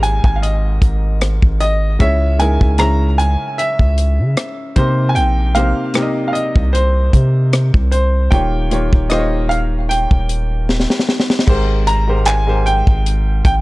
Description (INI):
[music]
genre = contemporary R&B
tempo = 76 BPM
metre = 4/4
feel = swing 54% on 16ths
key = Ab major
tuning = A4 = 440 Hz
[part]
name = clear baby grand piano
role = melody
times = 0.0-13.5 s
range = C5 to Bb5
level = -20 LUFS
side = right 1 dB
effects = digital delay
[part]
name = clear grand piano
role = accompaniment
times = 0.0-13.6 s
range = Ab2 to Fb5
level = -22 LUFS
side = left 1 dB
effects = none
[part]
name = long sustained 808-style bass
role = bass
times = 0.0-13.6 s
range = Eb1 to Db3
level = -15 LUFS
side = equal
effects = none
[part]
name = tight funk drum kit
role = drums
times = 0.0-13.6 s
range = crash cymbal, handclaps, hi-hat, kick drum, rim click, snare drum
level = -15 LUFS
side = equal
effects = vintage 12-bit sampler grit
[sound]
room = little or no reverb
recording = dark, warm production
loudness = -13 LUFS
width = side -20 dB against mid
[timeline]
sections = 0.0-11.5 A section; 11.5-13.6 B section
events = drum fill 10.7-11.5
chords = 0.0 Abmaj7; 2.0 Dbmadd9; 4.8 Cm7; 8.3 Eb7; 11.5 Abmaj7